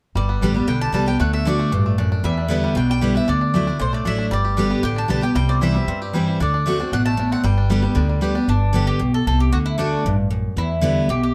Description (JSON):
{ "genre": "bluegrass", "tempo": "231 BPM", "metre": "4/4", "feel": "straight", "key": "G major", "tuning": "A4 = 440 Hz", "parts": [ { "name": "bluegrass banjo", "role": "melody", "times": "0.2-8.5 s", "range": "G3 to G4", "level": "-32 LUFS", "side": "equal", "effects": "plate reverb" }, { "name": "mandolin", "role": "melody", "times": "0.2-11.3 s", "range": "D4 to A5", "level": "-28 LUFS", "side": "equal", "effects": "plate reverb" }, { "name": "picked steel-string acoustic guitar", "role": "accompaniment", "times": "0.2-11.3 s", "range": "E2 to G4", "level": "-22 LUFS", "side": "equal", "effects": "none" }, { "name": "upright bass", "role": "bass", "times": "0.2-11.3 s", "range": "G1 to G2", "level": "-24 LUFS", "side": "equal", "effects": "none" } ], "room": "moderate small room reverb, RT60 0.5 s", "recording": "none", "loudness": "-20 LUFS", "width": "mono", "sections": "0.2-8.5 A section; 8.5-11.3 A section", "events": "none", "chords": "0.2 Gadd9; 1.2 D; 2.2 Em7; 3.3 Dadd9; 4.3 G; 5.4 C; 6.4 D7; 7.4 G; 9.5 D; 10.6 Em7", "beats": "| 0.16 0.42 0.68 0.94 | 1.20 1.46 1.72 1.98 | 2.23 2.50 2.75 3.02 | 3.28 3.54 3.80 4.06 | 4.32 4.58 4.84 5.10 | 5.36 5.62 5.88 6.14 | 6.40 6.66 6.92 7.18 | 7.44 7.70 7.96 8.22 | 8.48 8.74 9.00 9.26 | 9.52 9.78 10.04 10.30 | 10.56 10.82 11.08" }